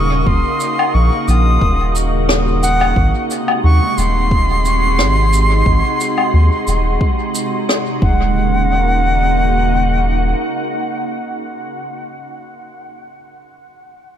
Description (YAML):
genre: ambient dub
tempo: 89 BPM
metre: 4/4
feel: swing 54% on 16ths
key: Eb dorian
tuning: A4 = 440 Hz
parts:
  - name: bright reedy silver concert flute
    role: melody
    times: 0.0-11.2 s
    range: Gb5 to Eb6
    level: -20 LUFS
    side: right 1 dB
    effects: dub echo
  - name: soft additive organ-like pad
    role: sustained chords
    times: 0.0-11.8 s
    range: C3 to Gb4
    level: -20 LUFS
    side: equal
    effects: ensemble chorus, built-in reverb
  - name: soft dub sub bass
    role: bass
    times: 0.0-10.3 s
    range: Eb1 to Eb2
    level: -15 LUFS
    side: equal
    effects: none
  - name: electronic kick drum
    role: drums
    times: 0.3-8.2 s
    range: none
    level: -16 LUFS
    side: equal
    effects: none
  - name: shaker, woodblock and rim click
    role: drums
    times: 0.6-7.8 s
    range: none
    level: -21 LUFS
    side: left 2 dB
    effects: dub echo
room: light reverb, small room ambience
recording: none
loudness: -13 LUFS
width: side -10 dB against mid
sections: 0.0-8.4 A section; 8.4-11.1 B section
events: none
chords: 0.0 Ebm7; 3.0 Ab7; 8.0 Ebm7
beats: | 0.27 0.94 1.62 2.29 | 2.96 3.64 4.31 4.99 | 5.66 6.33 7.01 7.68 | 8.36 9.03 9.71 10.38